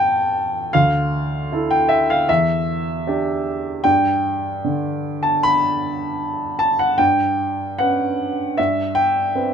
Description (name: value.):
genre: classical, impressionist solo piano.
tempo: 76 BPM.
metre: 4/4.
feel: rubato.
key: unclear.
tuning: A4 = 440 Hz.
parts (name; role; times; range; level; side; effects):
clear baby grand piano; solo; 0.0-9.5 s; D2 to B5; -17 LUFS; equal; none.
room: little or no reverb.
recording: close, detailed microphones.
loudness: -17 LUFS.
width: side -7 dB against mid.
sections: 0.0-9.5 A section.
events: none.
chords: 0.0 A5; 0.7 Dmadd9; 2.3 Em7; 3.8 G; 7.0 Gmaj7#11; 8.6 Gadd11.